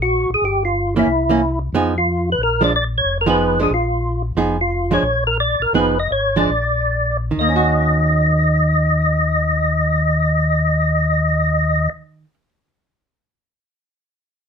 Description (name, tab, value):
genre	jazz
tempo	128-183 BPM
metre	4/4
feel	swing 64% on 8ths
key	unclear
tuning	A4 = 439 Hz
part	percussive tonewheel organ	melody	0.0-11.9 s	Fb4 to Eb5	-18 LUFS	left 1 dB	slow rotary speaker, chorus vibrato
part	mellow tonewheel organ	bass	0.0-11.9 s	F1 to F2	-20 LUFS	left 1 dB	overdrive, chorus vibrato, stopped rotary speaker
part	archtop guitar, miked and amplified	accompaniment	1.0-12.5 s	Eb3 to Ab4	-20 LUFS	right 4 dB	none
room	light reverb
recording	minimal, uncompressed stereo recording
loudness	-15 LUFS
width	side -6 dB against mid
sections	0.0-1.7 A section; 1.7-7.4 B section; 7.4-11.1 C section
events	slowing down 4.4-7.4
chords	0.4 Gm7b5; 1.1 C7b9; 1.7 Fm7b5; 2.4 Bb7; 3.0 Fm7b5; 3.7 Bb5; 4.4 Fm7b5; 5.0 Bbm; 5.7 Fm7b5; 6.5 Bb; 7.4 Ebm7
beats	0.09 | 0.42 0.75 1.08 1.41 | 1.73 2.06 2.39 2.72 | 3.05 3.37 3.70 4.03 | 4.36 4.69 5.03 5.37 | 5.73 6.10 6.50 6.92 | 7.37 7.84 8.31 8.78 | 9.25 9.72 10.19 10.66